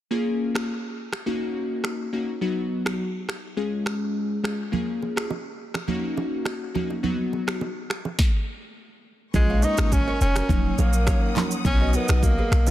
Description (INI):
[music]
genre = afrobeats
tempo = 104 BPM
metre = 4/4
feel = straight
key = Eb minor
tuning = A4 = 441 Hz
[part]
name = glassy digital keys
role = accompaniment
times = 0.1-12.3 s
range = F#3 to Ab4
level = -27 LUFS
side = left 1 dB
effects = chorus
[part]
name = afro-pop drum kit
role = drums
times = 0.6-12.7 s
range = finger snaps, handclaps, kick drum, rim click, shaker, snare drum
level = -26 LUFS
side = equal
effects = soft clipping on snare
[part]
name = congas and bongos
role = percussion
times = 4.7-12.7 s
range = none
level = -30 LUFS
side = right 6 dB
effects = none
[part]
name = warm studio string section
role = sustained chords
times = 9.3-12.7 s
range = Bb4 to Eb6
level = -36 LUFS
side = left 1 dB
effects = none
[part]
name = clean 808-style bass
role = bass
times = 9.3-12.7 s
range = Eb1 to B1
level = -22 LUFS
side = equal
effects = none
[part]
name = breathy tenor saxophone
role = melody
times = 9.4-12.7 s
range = Ab3 to F4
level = -27 LUFS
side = equal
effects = tape echo
[part]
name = nylon-string guitar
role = riff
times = 9.5-12.7 s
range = Gb4 to F5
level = -33 LUFS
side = right 3 dB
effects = tape echo
[sound]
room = studio reverb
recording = dense, heavily limited modern master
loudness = -22 LUFS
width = side -14 dB against mid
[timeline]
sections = 0.1-9.3 A section; 9.3-12.7 B section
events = none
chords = 0.1 Bbm7; 1.3 Ebm7; 2.4 B; 3.6 Db; 4.7 Bbm7; 5.9 Ebm7; 7.0 B; 8.2 N.C.; 9.3 Bbm7; 10.5 Ebm7; 11.7 B